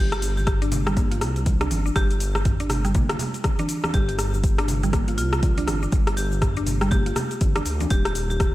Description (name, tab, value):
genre	afro house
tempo	121 BPM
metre	4/4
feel	swing 60% on 16ths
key	G minor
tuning	A4 = 440 Hz
part	marimba with medium hard mallets	melody	0.0-8.5 s	F4 to G4	-32 LUFS	left 2 dB	analog delay
part	mallet-like synth pluck	arpeggios	0.0-8.0 s	D3 to F4	-30 LUFS	equal	chorus, vintage 12-bit sampler grit, sidechain pumping, analog delay
part	dark detuned saw bass	bass	0.0-8.5 s	Eb1 to D2	-25 LUFS	equal	sidechain pumping
part	deep house drum kit	drums	0.1-8.5 s	hi-hat, rim click, shaker, toms	-28 LUFS	left 1 dB	overdrive
part	congas	percussion	0.4-8.4 s	none	-32 LUFS	right 3 dB	none
part	electronic kick drum	drums	0.5-8.5 s	none	-22 LUFS	equal	overdrive
room	little or no reverb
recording	none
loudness	-20 LUFS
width	side -16 dB against mid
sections	0.0-8.5 A section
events	none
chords	0.0 G5; 7.9 Eb